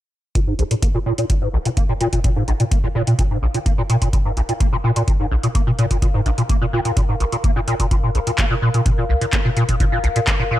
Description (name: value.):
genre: acid house.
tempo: 127 BPM.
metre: 4/4.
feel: straight.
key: unclear.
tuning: A4 = 438 Hz.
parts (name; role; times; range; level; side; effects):
liquid acid bass; riff; 0.4-10.6 s; Bb1 to Bb3; -19 LUFS; equal; phaser, overdrive, ensemble chorus, sidechain pumping.
booming analog drum machine; drums; 0.4-10.4 s; handclaps, hi-hat; -25 LUFS; equal; none.
electronic kick drum; drums; 0.4-10.4 s; none; -19 LUFS; equal; none.
ethereal airy pad; texture; 1.5-10.6 s; Bb4 to F5; -30 LUFS; left 3 dB; ensemble chorus, built-in reverb, sidechain pumping.
room: little or no reverb.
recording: none.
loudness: -16 LUFS.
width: side -14 dB against mid.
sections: 0.4-10.6 A section.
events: fade-in on ambient pad 0.4-10.6; filter sweep on acid bass 0.4-10.6.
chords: 0.4 Bb5.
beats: | 0.35 0.82 1.30 1.77 | 2.24 2.71 3.19 3.66 | 4.13 4.61 5.08 5.55 | 6.02 6.49 6.97 7.44 | 7.91 8.38 8.86 9.33 | 9.80 10.27.